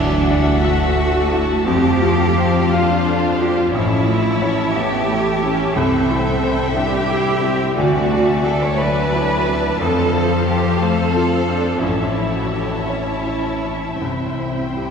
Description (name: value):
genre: cinematic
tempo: 59 BPM (dotted quarters)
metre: 6/8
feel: rubato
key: unclear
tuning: A4 = 439 Hz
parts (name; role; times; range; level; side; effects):
- dark symphonic violin section; melody; 0.0-14.9 s; G5 to A5; -29 LUFS; left 4 dB; none
- rich symphonic violin section; second line; 0.0-14.9 s; C5 to F#5; -26 LUFS; left 2 dB; none
- bright baby grand piano; accompaniment; 0.0-14.9 s; A1 to F5; -23 LUFS; equal; none
- rich symphonic viola section; accompaniment; 0.0-14.9 s; F3 to E4; -24 LUFS; right 1 dB; none
- concert harp; arpeggios; 0.0-14.9 s; A2 to F5; -24 LUFS; left 6 dB; none
- rich chamber double bass section; bass; 0.0-14.9 s; A1 to F2; -24 LUFS; right 2 dB; none
- rich studio cello section; bass; 0.0-14.9 s; C#4 to C#5; -21 LUFS; right 2 dB; none
room: wet cathedral reverb, RT60 4.0 s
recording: heard from further back in the room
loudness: -15 LUFS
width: side -6 dB against mid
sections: 0.0-14.9 A section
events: none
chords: 0.0 Dadd9; 1.7 F; 3.7 A; 5.8 C; 7.8 Dadd9; 9.8 F; 11.8 A; 14.0 C